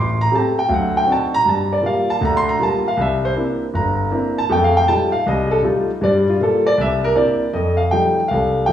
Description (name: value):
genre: solo jazz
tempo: 158 BPM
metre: 4/4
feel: swing 65% on 8ths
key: F mixolydian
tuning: A4 = 440 Hz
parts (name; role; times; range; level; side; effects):
- warm concert grand piano; solo; 0.0-8.7 s; G1 to C6; -15 LUFS; equal; none
room: wet large studio reverb, RT60 1.2 s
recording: heard from further back in the room, small room ambience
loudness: -15 LUFS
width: side -10 dB against mid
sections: 0.0-7.5 A section; 7.5-8.7 B section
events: grand piano solo 0.0-7.5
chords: 0.0 Am7; 0.7 D7b9; 1.5 Gm7; 3.0 C9; 4.5 F9; 6.0 Gm7; 6.8 C9; 7.5 F9